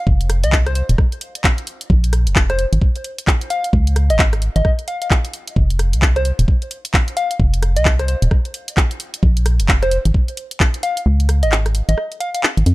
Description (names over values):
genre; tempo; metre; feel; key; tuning
UK garage, two-step garage; 131 BPM; 4/4; swing 61% on 16ths; F minor; A4 = 444 Hz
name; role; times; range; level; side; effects
organ-like FM bass; bass; 0.1-12.7 s; Eb1 to F2; -15 LUFS; equal; sidechain pumping
electronic kick drum; drums; 0.1-10.7 s; none; -15 LUFS; equal; small room ambience
garage drum kit; drums; 0.2-12.7 s; handclaps, hi-hat, rim click; -21 LUFS; equal; small room ambience
soft struck synth lead; melody; 0.4-12.4 s; C5 to F5; -23 LUFS; left 1 dB; chorus, cassette tape, dub echo
room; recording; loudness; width
little or no reverb; none; -15 LUFS; side -19 dB against mid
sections
0.0-12.7 A section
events
kick drops out 11.1-12.7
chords
0.0 F5; 1.9 Bb5; 3.7 Db5; 5.6 F5; 9.2 Bb5; 11.1 Db5